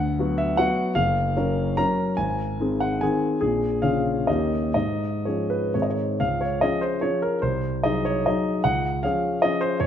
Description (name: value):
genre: classical, romantic triple-time dance for piano with dotted rhythms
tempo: 114-163 BPM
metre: 3/4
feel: rubato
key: Db major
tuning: A4 = 440 Hz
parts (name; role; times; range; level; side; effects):
- warm concert grand piano; solo; 0.0-9.9 s; Gb1 to Bb5; -21 LUFS; left 1 dB; none
room: wet recital hall reverb, RT60 1.5 s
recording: dark, warm production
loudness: -21 LUFS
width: side -9 dB against mid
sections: 0.0-6.2 A section; 6.2-9.9 B section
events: none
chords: 0.0 Bm/D; 1.0 Gbmaj7; 2.2 Ab; 3.4 Bbm7; 4.3 Eb7; 4.7 Db/Ab; 5.7 Ab; 6.2 Db; 7.4 Ab7/C; 8.6 Db